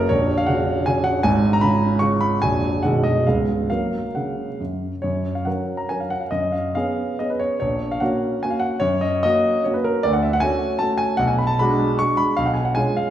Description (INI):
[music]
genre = classical, romantic triple-time dance for piano with dotted rhythms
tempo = 128-165 BPM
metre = 3/4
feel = rubato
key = F# major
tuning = A4 = 440 Hz
[part]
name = warm grand piano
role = solo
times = 0.0-13.1 s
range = A#0 to C#6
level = -18 LUFS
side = equal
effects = none
[sound]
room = wet recital hall reverb, RT60 1.5 s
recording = heard from further back in the room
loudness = -18 LUFS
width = side -11 dB against mid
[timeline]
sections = 0.0-5.0 A section; 5.0-13.1 A section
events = none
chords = 0.1 F#/A#; 1.2 C#7/G#; 2.4 F#/A#; 2.8 G#m7/B; 3.3 C#7; 3.7 F#; 6.3 C#7/F#; 7.6 F#/A#; 8.8 F#; 10.0 Dmaj7; 11.2 G#m7b5/B; 12.4 C#7/B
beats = | 0.09 0.47 0.86 | 1.23 1.62 2.01 | 2.41 2.81 3.25 | 3.69 4.13 4.59 | 5.04 5.47 5.90 | 6.32 6.75 7.18 | 7.59 8.01 8.43 | 8.82 9.24 9.65 | 10.04 10.43 10.80 | 11.19 11.59 11.99 | 12.37 12.76